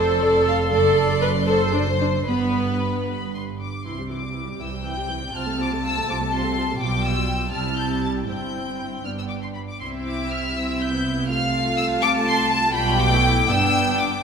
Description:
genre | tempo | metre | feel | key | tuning
quick classical-period movement for string orchestra | 74-84 BPM (dotted quarters) | 6/8 | rubato | C major | A4 = 440 Hz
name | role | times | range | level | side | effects
rich studio violin section | melody | 0.0-14.2 s | A5 to A6 | -27 LUFS | left 3 dB | none
rich studio violin section | second line | 0.0-14.2 s | B4 to A5 | -26 LUFS | left 2 dB | none
warm studio viola section | accompaniment | 0.0-14.2 s | E3 to B4 | -24 LUFS | equal | none
dark studio double bass section | bass | 0.0-14.2 s | F1 to C2 | -28 LUFS | right 3 dB | none
warm studio cello section | bass | 0.0-14.2 s | F2 to C3 | -27 LUFS | right 3 dB | none
room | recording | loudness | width
wet scoring stage reverb, RT60 1.7 s | none | -20 LUFS | side -6 dB against mid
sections
0.0-3.9 A section; 3.9-14.2 B section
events
none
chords
0.0 Dm7/F; 0.7 D7/F#; 2.3 G; 3.9 C; 5.3 F/C; 6.8 G7/B; 7.5 C; 8.3 C/G; 9.0 G; 9.8 C; 11.3 F/C; 12.8 G7/B; 13.5 G

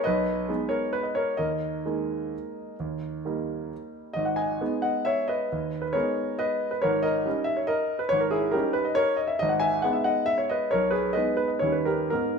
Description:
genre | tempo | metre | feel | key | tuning
classical, piano waltz | 118-146 BPM | 3/4 | rubato | G# minor | A4 = 440 Hz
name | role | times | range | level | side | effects
clear concert grand piano | solo | 0.0-12.4 s | G#1 to G#5 | -24 LUFS | equal | none
room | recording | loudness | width
moderate recital hall reverb, RT60 1.4 s | minimal, uncompressed stereo recording | -24 LUFS | side -5 dB against mid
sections
0.0-12.4 A section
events
none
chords
0.1 G#m/B; 1.4 D#sus4; 2.8 D#; 4.2 G#m; 6.8 D#7/G#; 9.4 G#m; 10.7 G#m/B; 11.6 D#7

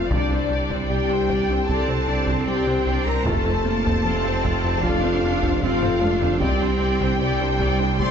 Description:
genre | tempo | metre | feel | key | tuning
cinematic, hybrid orchestral and electronic film score | 76 BPM | 4/4 | straight | unclear | A4 = 439 Hz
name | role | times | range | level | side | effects
warm symphonic violin section | melody | 0.0-8.1 s | A4 to D5 | -31 LUFS | left 2 dB | none
clear symphonic violin section | second line | 0.0-8.1 s | D5 to C6 | -28 LUFS | left 2 dB | none
clear symphonic viola section | accompaniment | 0.0-8.1 s | A3 to A4 | -30 LUFS | right 2 dB | none
mellow French horn section | sustained chords | 0.0-8.1 s | D4 to C5 | -25 LUFS | left 5 dB | none
rubbery square bass | riff | 0.0-8.1 s | C2 to F3 | -30 LUFS | left 2 dB | none
clear symphonic cello section | bass | 0.0-8.1 s | G3 to D4 | -28 LUFS | right 4 dB | none
rich symphonic double bass section | bass | 0.0-8.1 s | C2 to F2 | -30 LUFS | right 4 dB | none
warm sub bass | bass | 0.0-8.1 s | F1 to C2 | -29 LUFS | equal | none
tight sequenced synth | arpeggios | 0.1-8.1 s | C3 to F4 | -34 LUFS | right 2 dB | none
mellow tuba | bass | 0.1-8.1 s | F1 to C2 | -29 LUFS | right 6 dB | none
taiko ensemble | drums | 0.1-8.1 s | none | -30 LUFS | equal | none
room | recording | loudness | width
moderate scoring stage reverb, RT60 2.2 s | nothing above 7.7 kHz | -19 LUFS | side -7 dB against mid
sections
0.0-8.1 A section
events
drum fill 5.6-6.4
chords
0.1 Csus2; 3.3 F; 6.4 Csus2

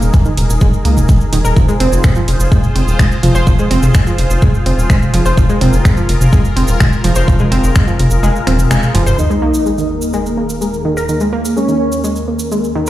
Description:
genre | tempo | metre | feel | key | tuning
melodic techno | 126 BPM | 4/4 | straight | unclear | A4 = 439 Hz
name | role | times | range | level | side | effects
sweeping resonant pad | sustained chords | 0.0-12.9 s | Eb2 to C5 | -21 LUFS | left 1 dB | chorus, sidechain pumping
gritty driven synth bass | bass | 0.0-9.1 s | Eb1 to F2 | -14 LUFS | equal | tube saturation, sidechain pumping
cabasa | percussion | 0.0-12.9 s | none | -28 LUFS | right 3 dB | none
analog pluck | arpeggios | 0.1-12.9 s | Eb3 to C5 | -18 LUFS | right 1 dB | chorus, sidechain pumping, dub echo
electronic kick drum | drums | 0.1-7.9 s | none | -11 LUFS | equal | none
house drum kit | drums | 0.4-9.2 s | finger snaps, hi-hat, toms | -18 LUFS | equal | sidechain pumping on cymbals, sidechain pumping on hats, sidechain pumping on toms
soft supersaw | melody | 9.2-12.0 s | Db4 to Eb4 | -20 LUFS | equal | cassette tape, sidechain pumping, low-pass filter, dub echo
airy dreamy lead | second line | 9.2-12.0 s | Db5 to Eb5 | -26 LUFS | right 2 dB | chorus, sidechain pumping, dub echo
sub drop | sound effects | 9.2-11.1 s | none | -21 LUFS | equal | none
room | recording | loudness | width
light reverb | played on a big sound system in a bare room, large studio reverb | -10 LUFS | side -14 dB against mid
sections
0.0-9.2 A section; 9.2-12.9 B section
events
kick drops out 8.2-9.2; drum fill 8.5-9.2; band accent 8.7; impact 9.2-11.1; filter sweep on analog synth pad 9.2-12.9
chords
0.0 Ebsus4; 1.6 Fm; 9.2 Ebsus4

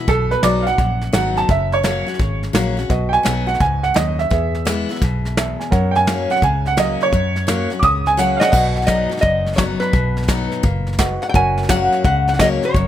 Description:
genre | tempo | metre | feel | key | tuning
honky-tonk and classic country | 170 BPM | 4/4 | swing 65% on 8ths | B major | A4 = 440 Hz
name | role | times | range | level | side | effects
picked steel-string acoustic guitar | accompaniment | 0.0-12.9 s | E2 to F#4 | -23 LUFS | left 5 dB | none
bright upright piano | second line | 0.1-8.5 s | A4 to D#6 | -18 LUFS | right 4 dB | none
vintage muted fingered electric bass | bass | 0.1-12.9 s | F#1 to F#2 | -21 LUFS | equal | none
soft brush drum kit | drums | 0.1-12.8 s | crash cymbal, hi-hat, kick drum, snare drum | -21 LUFS | equal | none
warm grand piano | accompaniment | 2.9-12.9 s | F#4 to G#5 | -28 LUFS | right 2 dB | none
lap resonator guitar | melody | 8.4-12.9 s | B4 to G#5 | -19 LUFS | equal | none
room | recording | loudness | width
little or no reverb | none | -15 LUFS | side -11 dB against mid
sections
0.0-8.5 A section; 8.5-12.9 B section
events
upright piano solo 0.0-8.5; grand piano fill 5.2-5.7; drum fill 8.2-8.5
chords
0.1 B; 1.5 F#; 2.9 B; 4.3 E; 5.7 F#; 8.5 B; 11.3 F#

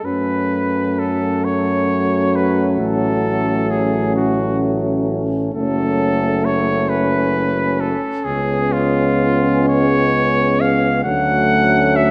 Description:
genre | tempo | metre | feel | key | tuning
classical, hymn-like piece for brass band | 44 BPM (dotted quarters) | 6/8 | rubato | F# minor | A4 = 440 Hz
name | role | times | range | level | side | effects
clear cornet | melody | 0.0-12.1 s | E#4 to F#5 | -22 LUFS | equal | none
dark French horn section | second line | 0.0-12.1 s | C#4 | -25 LUFS | equal | none
clear trombone | accompaniment | 0.0-12.1 s | F#3 to G#3 | -26 LUFS | equal | none
warm euphonium | accompaniment | 0.1-12.1 s | A3 to B3 | -25 LUFS | equal | none
warm tuba | bass | 0.1-12.1 s | F#1 to F#2 | -24 LUFS | equal | none
room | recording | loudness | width
moderate scoring stage reverb, RT60 1.9 s | none | -17 LUFS | mono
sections
0.1-12.1 A section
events
none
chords
0.1 F#m; 2.8 F#m/A; 5.6 F#m; 8.3 C#7; 11.1 Dmaj7

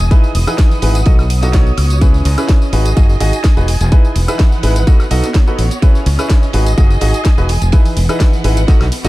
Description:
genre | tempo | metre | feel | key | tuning
piano house | 126 BPM | 4/4 | straight | unclear | A4 = 445 Hz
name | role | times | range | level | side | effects
analog string pad | sustained chords | 0.0-9.1 s | D#6 | -31 LUFS | right 4 dB | ensemble chorus, sidechain pumping
modern bright fingered electric bass | bass | 0.0-9.1 s | E1 to C#2 | -13 LUFS | equal | sidechain pumping
house drum kit | drums | 0.0-9.1 s | hi-hat, snare drum, tambourine, woodblock | -24 LUFS | equal | none
warm soul drum kit | drums | 0.0-9.0 s | ride cymbal, snare drum | -34 LUFS | right 5 dB | none
warm studio string section | texture | 0.0-9.1 s | E3 to G#5 | -24 LUFS | right 1 dB | sidechain pumping
clear baby grand piano | riff | 0.1-9.1 s | C#4 to D#5 | -20 LUFS | right 1 dB | sidechain pumping, ping-pong delay
electronic kick drum | drums | 0.1-8.8 s | none | -9 LUFS | equal | none
room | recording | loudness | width
small room ambience | dark, warm production | -10 LUFS | side -18 dB against mid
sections
0.0-9.1 A section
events
drum fill 8.7-9.1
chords
0.0 Emaj7; 1.1 B7; 2.0 C#m7; 2.7 G#m7; 3.7 Emaj7; 4.9 B7; 5.8 C#m7; 6.5 G#m7; 7.5 Emaj7

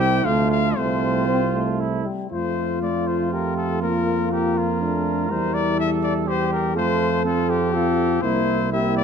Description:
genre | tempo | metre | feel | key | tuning
classical, brass quintet | 121 BPM | 3/4 | rubato | F major | A4 = 435 Hz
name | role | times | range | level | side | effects
clear trumpet | melody | 0.0-9.0 s | F4 to G5 | -26 LUFS | left 8 dB | none
clear flugelhorn | second line | 0.0-9.0 s | E4 to Bb4 | -28 LUFS | right 8 dB | none
mellow French horn | accompaniment | 0.0-9.0 s | G3 to A4 | -25 LUFS | left 5 dB | none
warm euphonium | accompaniment | 0.0-9.0 s | G3 to E4 | -27 LUFS | right 4 dB | none
mellow tuba | bass | 0.0-9.0 s | C2 to F2 | -25 LUFS | right 5 dB | none
room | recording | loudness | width
moderate recital hall reverb, RT60 1.6 s | close, detailed microphones | -19 LUFS | side -7 dB against mid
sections
0.0-2.3 A section; 2.3-9.0 B section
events
none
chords
0.3 Dm; 0.8 F/C; 1.8 C; 2.3 F; 3.8 Bb/F; 5.3 C13/E; 6.8 F; 8.2 C7

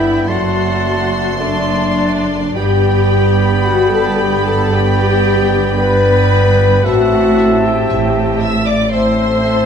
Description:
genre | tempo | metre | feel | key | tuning
classical, slow romantic movement for symphony orchestra | 49-58 BPM | 4/4 | rubato | unclear | A4 = 440 Hz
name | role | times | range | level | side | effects
rich studio violin section | melody | 0.0-9.5 s | E5 to C6 | -28 LUFS | left 2 dB | none
bright concert flute | second line | 0.0-9.7 s | A5 to C6 | -26 LUFS | left 3 dB | none
dark studio violin section | second line | 0.0-9.7 s | D5 to E6 | -26 LUFS | left 2 dB | none
mellow clarinet | second line | 0.0-9.7 s | D5 to E5 | -24 LUFS | equal | none
warm oboe | second line | 0.0-9.7 s | E5 to A5 | -24 LUFS | right 1 dB | none
clear studio viola section | accompaniment | 0.0-9.7 s | D4 to E5 | -22 LUFS | right 2 dB | none
warm bassoon | accompaniment | 0.0-9.7 s | A3 to C4 | -24 LUFS | right 3 dB | none
mellow French horn section | sustained chords | 0.0-9.7 s | D4 to E5 | -16 LUFS | left 6 dB | none
clear studio double bass section | bass | 0.0-9.7 s | F#1 to A1 | -18 LUFS | right 4 dB | none
rich studio cello section | bass | 0.0-9.7 s | F#2 to A2 | -18 LUFS | right 2 dB | none
room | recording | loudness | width
wet recital hall reverb, RT60 1.6 s | none | -11 LUFS | side -7 dB against mid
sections
0.0-9.7 A section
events
none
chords
0.3 D7/F#; 2.6 G; 6.8 Am

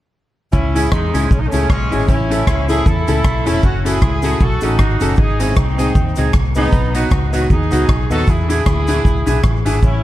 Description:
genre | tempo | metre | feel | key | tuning
ska | 155 BPM | 4/4 | swing 57% on 8ths | C# minor | A4 = 440 Hz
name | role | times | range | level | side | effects
warm horn section | melody | 0.5-10.0 s | G#3 to A4 | -21 LUFS | equal | dub echo
vintage muted fingered electric bass | bass | 0.5-10.0 s | E1 to E2 | -18 LUFS | equal | none
street-band drum kit | drums | 0.5-9.9 s | hi-hat, kick drum, rim click | -17 LUFS | equal | none
cabasa | percussion | 0.5-9.9 s | none | -40 LUFS | left 5 dB | none
clean electric guitar | accompaniment | 0.7-9.8 s | E3 to A4 | -26 LUFS | right 4 dB | spring reverb
dark upright piano | stabs | 0.7-9.8 s | B3 to A4 | -22 LUFS | left 2 dB | none
room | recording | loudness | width
studio ambience | dark, warm production | -13 LUFS | side -14 dB against mid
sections
0.5-10.0 A section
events
none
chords
0.5 C#m; 2.1 A; 3.6 F#m; 5.2 G#; 6.7 B; 8.3 E7

